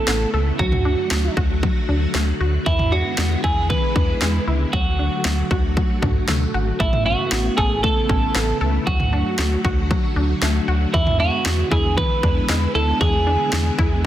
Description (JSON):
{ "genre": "synth-pop", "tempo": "116 BPM", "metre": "4/4", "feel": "straight", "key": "unclear", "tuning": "A4 = 440 Hz", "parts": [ { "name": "twelve-string electric guitar", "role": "melody", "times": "0.0-14.0 s", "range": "E4 to B4", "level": "-23 LUFS", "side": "right 2 dB", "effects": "tape echo" }, { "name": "string machine, full ensemble", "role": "sustained chords", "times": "0.0-14.1 s", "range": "C#3 to F#4", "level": "-26 LUFS", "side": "equal", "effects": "ensemble chorus" }, { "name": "analog pluck", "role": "arpeggios", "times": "0.1-14.1 s", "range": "E3 to A4", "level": "-28 LUFS", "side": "left 3 dB", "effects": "chorus, tape echo" }, { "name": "round analog bass", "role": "bass", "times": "0.1-14.1 s", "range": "G#1 to E2", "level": "-21 LUFS", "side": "equal", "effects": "none" }, { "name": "house drum kit", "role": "drums", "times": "0.1-13.9 s", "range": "kick drum, snare drum, toms", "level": "-22 LUFS", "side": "equal", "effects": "overdrive" } ], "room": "light reverb", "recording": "dense, heavily limited modern master", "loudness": "-17 LUFS", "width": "side -12 dB against mid", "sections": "0.0-14.1 A section", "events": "none", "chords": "0.0 Aadd9; 0.6 D; 2.7 E7; 4.7 D; 6.8 Aadd9; 8.9 D; 10.9 E7", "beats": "0.08 | 0.59 1.11 1.63 2.15 | 2.66 3.18 3.70 4.21 | 4.73 5.25 5.77 6.28 | 6.80 7.32 7.83 8.35 | 8.87 9.39 9.90 10.42 | 10.94 11.46 11.97 12.49 | 13.01 13.53 14.04" }